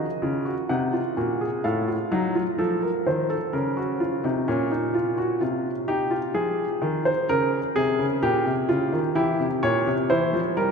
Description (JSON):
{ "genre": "classical, baroque-style 3-part fugue for grand piano", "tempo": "64 BPM", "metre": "4/4", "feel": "straight", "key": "Bb minor", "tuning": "A4 = 439 Hz", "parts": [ { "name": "warm grand piano", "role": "solo", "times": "0.0-10.7 s", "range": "A2 to Gb5", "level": "-22 LUFS", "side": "equal", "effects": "none" } ], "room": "wet cathedral reverb, RT60 5.2 s", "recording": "in a vast, echoing space", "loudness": "-22 LUFS", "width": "side -5 dB against mid", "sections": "0.0-10.7 A section", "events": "none", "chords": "0.0 Ebm; 1.6 F7/A; 3.5 Bbm; 5.4 Fm/C; 7.3 Bbm; 9.2 C7" }